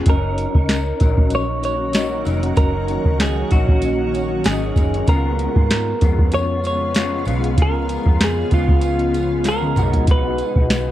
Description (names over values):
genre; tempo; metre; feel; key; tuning
indie pop, bedroom pop; 96 BPM; 4/4; swing 55% on 16ths; F# major; A4 = 440 Hz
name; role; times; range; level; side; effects
clean electric guitar; melody; 0.0-10.9 s; E#4 to C#5; -23 LUFS; right 1 dB; wide subtle chorus, slapback echo
electric guitar through a small old amp; accompaniment; 0.0-10.9 s; B2 to A#4; -25 LUFS; left 4 dB; ensemble chorus, warbly pitch drift
shimmering ambient pad; sustained chords; 1.5-10.9 s; C#3 to F#4; -27 LUFS; right 1 dB; chorus, built-in reverb
vintage muted picked electric bass; bass; 0.1-10.9 s; E#1 to G#2; -23 LUFS; equal; none
soft vintage rhythm box; drums; 0.1-10.9 s; hi-hat, kick drum, snare drum, toms; -17 LUFS; equal; vintage 12-bit sampler grit
tambourine; percussion; 0.1-10.9 s; none; -42 LUFS; right 13 dB; none
room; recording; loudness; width
light reverb; dark, warm production; -16 LUFS; side -13 dB against mid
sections
0.1-10.9 A section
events
drum fill 9.5-10.1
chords
0.1 F#6; 5.1 C#7; 9.8 G#m7/B